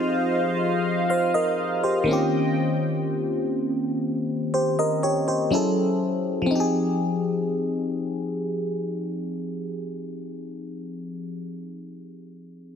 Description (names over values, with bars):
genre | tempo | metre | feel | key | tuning
R&B | 61 BPM | 4/4 | straight | F minor | A4 = 440 Hz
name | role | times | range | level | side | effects
FM electric piano | accompaniment | 0.0-12.8 s | Eb3 to F5 | -24 LUFS | left 1 dB | chorus, phaser
chorused pulse-width pad | sustained chords | 0.0-2.6 s | Eb3 to G5 | -26 LUFS | right 1 dB | none
room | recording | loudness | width
moderate lush hall reverb, RT60 2.8 s | dense, heavily limited modern master | -22 LUFS | side -7 dB against mid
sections
0.0-6.5 A section; 6.5-10.4 B section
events
none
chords
0.0 Fm7; 2.1 Eb13; 5.5 Gbm7; 6.5 Fm7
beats
0.61 1.59 | 2.57 3.56 4.54 5.52 | 6.51 7.49 8.47 9.46